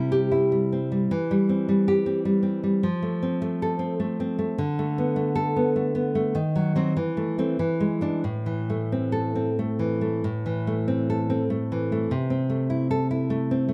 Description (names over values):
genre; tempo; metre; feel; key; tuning
romantic piece for solo classical guitar; 88-105 BPM; 3/4; rubato; A minor; A4 = 440 Hz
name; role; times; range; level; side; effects
nylon-string guitar; solo; 0.0-13.7 s; A2 to A4; -25 LUFS; equal; none
room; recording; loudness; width
light reverb; close, detailed microphones; -25 LUFS; mono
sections
0.0-10.2 A section; 10.2-13.7 A section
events
none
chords
0.0 C; 1.1 C/E; 2.8 F; 4.6 Bm7/D; 6.4 D#m6; 7.0 Am/E; 7.6 E7; 8.2 Am; 12.1 Am/C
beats
0.53 | 1.11 1.68 2.26 | 2.84 3.43 4.01 | 4.58 5.17 5.77 | 6.37 6.98 7.60 | 8.25 8.93 9.60 | 10.25 10.88 11.50 | 12.10 12.69 13.29